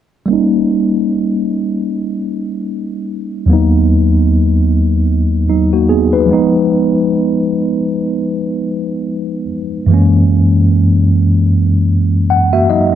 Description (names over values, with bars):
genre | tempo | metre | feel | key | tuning
R&B | 75 BPM | 4/4 | swing 58% on 16ths | unclear | A4 = 442 Hz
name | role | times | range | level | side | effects
mellow tine electric piano | solo | 0.3-13.0 s | D#2 to F#5 | -11 LUFS | equal | slow stereo tremolo, low-pass filter
room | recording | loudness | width
light reverb | dark, warm production | -11 LUFS | side -10 dB against mid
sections
0.3-13.0 A section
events
filter sweep on tine electric piano 0.3-13.0; tine electric piano fill 11.9-13.0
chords
0.3 D#7; 3.5 G#m9/D#; 6.3 Fm7b5; 9.9 F#7